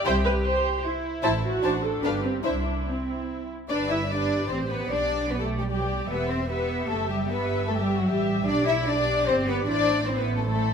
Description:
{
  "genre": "quick classical-period movement for string orchestra",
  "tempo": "150 BPM",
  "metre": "3/4",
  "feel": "rubato",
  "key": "C major, G major from 3.7 s",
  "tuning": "A4 = 441 Hz",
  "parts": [
    { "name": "warm studio viola section", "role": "accompaniment", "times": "0.0-10.7 s", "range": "C4 to E5", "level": "-29 LUFS", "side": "right 1 dB", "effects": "none" },
    { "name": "warm symphonic cello section", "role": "bass", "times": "0.0-10.7 s", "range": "F#3 to G4", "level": "-29 LUFS", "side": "right 2 dB", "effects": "none" },
    { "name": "warm symphonic violin section", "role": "melody", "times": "0.1-10.7 s", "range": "F#4 to A5", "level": "-32 LUFS", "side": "left 3 dB", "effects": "none" },
    { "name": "warm symphonic violin section", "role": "second line", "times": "0.1-10.7 s", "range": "D4 to E5", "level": "-29 LUFS", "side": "left 4 dB", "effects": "none" },
    { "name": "dark symphonic double bass section", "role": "bass", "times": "0.1-10.7 s", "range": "E1 to C2", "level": "-30 LUFS", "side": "right 1 dB", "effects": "none" }
  ],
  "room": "light reverb",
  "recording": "none",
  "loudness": "-23 LUFS",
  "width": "side -6 dB against mid",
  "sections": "0.0-3.7 A section; 3.7-10.7 B section",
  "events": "none",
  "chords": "0.1 C; 1.2 Am; 1.6 D7/A; 2.0 G7; 2.4 C; 3.7 G; 4.9 G/B; 6.1 Em; 7.3 Em/G; 8.5 G/B; 9.7 Am"
}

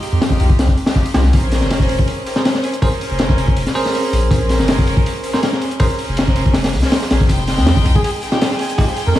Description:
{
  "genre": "drum and bass, jungle",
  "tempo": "161 BPM",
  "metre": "4/4",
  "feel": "straight",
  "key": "unclear",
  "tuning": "A4 = 439 Hz",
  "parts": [
    { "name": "rich chamber string section", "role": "sustained chords", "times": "0.0-9.2 s", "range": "Ab3 to G5", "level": "-23 LUFS", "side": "equal", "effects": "vintage 12-bit sampler grit" },
    { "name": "crunchy breakbeat drum kit", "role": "drums", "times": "0.0-9.2 s", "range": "hi-hat, kick drum, snare drum", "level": "-16 LUFS", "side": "left 1 dB", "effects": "none" },
    { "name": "saturated sub bass", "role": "bass", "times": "0.1-9.2 s", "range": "F1 to F2", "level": "-17 LUFS", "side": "equal", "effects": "none" },
    { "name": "bell-like tine electric piano", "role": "stabs", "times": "1.1-5.9, 8.3-8.8 s", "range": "Ab3 to C5", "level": "-24 LUFS", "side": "right 2 dB", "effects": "low-pass filter, dub echo" },
    { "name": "crunchy breakbeat drum kit", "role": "drums", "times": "7.3-9.2 s", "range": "hi-hat, snare drum", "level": "-31 LUFS", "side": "left 1 dB", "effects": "none" },
    { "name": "twinkling granular texture", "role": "texture", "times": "7.8-9.2 s", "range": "Ab4", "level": "-29 LUFS", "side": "right 2 dB", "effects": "built-in reverb" },
    { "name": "trumpet with bucket mute", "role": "melody", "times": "7.9-9.2 s", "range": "Ab4 to Bb4", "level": "-24 LUFS", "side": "equal", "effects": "dub echo" }
  ],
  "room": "light reverb, small room ambience",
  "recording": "vinyl crackle, studio reverb",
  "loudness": "-13 LUFS",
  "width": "side -14 dB against mid",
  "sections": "0.0-9.2 A section",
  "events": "none",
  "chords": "0.0 Fm9; 1.3 Bbm9; 7.3 Fm9"
}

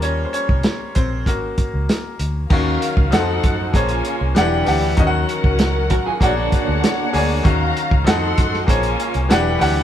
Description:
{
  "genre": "lush 1970s-style soul",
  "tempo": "97 BPM",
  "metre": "4/4",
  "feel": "straight",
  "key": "unclear",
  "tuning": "A4 = 441 Hz",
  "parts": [
    { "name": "bright concert grand piano", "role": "accompaniment", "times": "0.0-9.8 s", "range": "Eb3 to Ab5", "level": "-21 LUFS", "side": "left 1 dB", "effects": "none" },
    { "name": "vintage muted fingered electric bass", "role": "bass", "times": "0.0-9.8 s", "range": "E1 to Gb2", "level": "-22 LUFS", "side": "equal", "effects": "none" },
    { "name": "warm soul drum kit", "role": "drums", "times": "0.0-9.8 s", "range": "crash cymbal, hi-hat, kick drum, snare drum", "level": "-19 LUFS", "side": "equal", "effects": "none" },
    { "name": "muted studio string section", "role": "second line", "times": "2.5-9.8 s", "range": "Db4 to C6", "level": "-25 LUFS", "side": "left 2 dB", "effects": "none" },
    { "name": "muted studio string section", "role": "sustained chords", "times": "2.5-9.8 s", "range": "Db3 to F5", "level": "-29 LUFS", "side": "right 2 dB", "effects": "none" },
    { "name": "electric guitar through a small old amp", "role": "riff", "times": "5.9-7.3 s", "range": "Bb3 to Bb4", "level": "-24 LUFS", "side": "right 2 dB", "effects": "tremolo" }
  ],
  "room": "moderate stone room reverb, RT60 1.1 s",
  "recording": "band playing live in one room",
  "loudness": "-15 LUFS",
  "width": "side -10 dB against mid",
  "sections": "0.0-2.5 A section; 2.5-9.8 B section",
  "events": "grand piano solo 0.0-2.5",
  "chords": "0.0 Eb7; 1.3 Ab9sus4; 2.5 Ebm9; 3.1 F7b9; 3.7 Bbm9; 4.4 Em9; 5.0 Ebm7; 6.2 Bb7alt; 7.5 Ebm9; 8.1 F7b9; 8.7 Bbm9; 9.3 Em9"
}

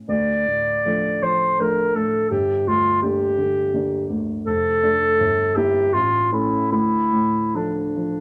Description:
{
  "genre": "classical, romantic duo for clarinet and grand piano",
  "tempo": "81 BPM",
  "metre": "3/4",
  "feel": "uneven beats, rubato",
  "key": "D minor",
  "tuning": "A4 = 440 Hz",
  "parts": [
    { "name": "dark grand piano", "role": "accompaniment", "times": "0.0-8.2 s", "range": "F1 to E4", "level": "-26 LUFS", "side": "equal", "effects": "none" },
    { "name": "warm clarinet", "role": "melody", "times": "0.1-8.2 s", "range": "D4 to D5", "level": "-21 LUFS", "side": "equal", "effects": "none" }
  ],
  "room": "moderate studio reverb, RT60 0.9 s",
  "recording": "none",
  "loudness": "-20 LUFS",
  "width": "mono",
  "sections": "0.0-8.2 A section",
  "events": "none",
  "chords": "0.1 Dm; 2.3 Gm; 4.5 Dm/F; 5.2 Edim/G; 5.9 A; 6.7 Dm"
}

